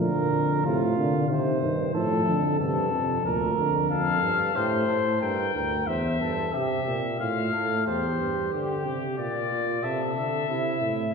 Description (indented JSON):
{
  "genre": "classical, imitative canzona for brass ensemble",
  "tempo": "92 BPM",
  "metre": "3/4",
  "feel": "straight",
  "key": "unclear",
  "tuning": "A4 = 440 Hz",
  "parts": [
    { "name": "mellow flugelhorn", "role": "second line", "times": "0.0-11.1 s", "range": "E4 to C5", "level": "-29 LUFS", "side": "right 2 dB", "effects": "none" },
    { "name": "dark euphonium", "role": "accompaniment", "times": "0.0-3.9 s", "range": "Bb2 to F3", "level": "-27 LUFS", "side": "equal", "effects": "none" },
    { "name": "warm bass trombone", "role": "bass", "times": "0.0-11.1 s", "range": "D2 to D3", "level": "-28 LUFS", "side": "right 1 dB", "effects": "none" },
    { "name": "mellow trumpet", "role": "melody", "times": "3.9-11.1 s", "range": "G4 to G5", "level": "-28 LUFS", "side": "left 5 dB", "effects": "none" }
  ],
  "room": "wet concert hall reverb, RT60 1.8 s",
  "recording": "heard from further back in the room",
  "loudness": "-23 LUFS",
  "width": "side -5 dB against mid",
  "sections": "0.0-7.9 A section; 7.9-11.1 B section",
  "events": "none",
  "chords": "0.0 Bb; 1.3 Cm; 1.9 F; 3.2 Bb/D; 3.9 F; 5.2 Gm; 5.9 C/E; 7.2 F/A; 7.9 C/E; 9.2 Bb; 9.8 Am/C"
}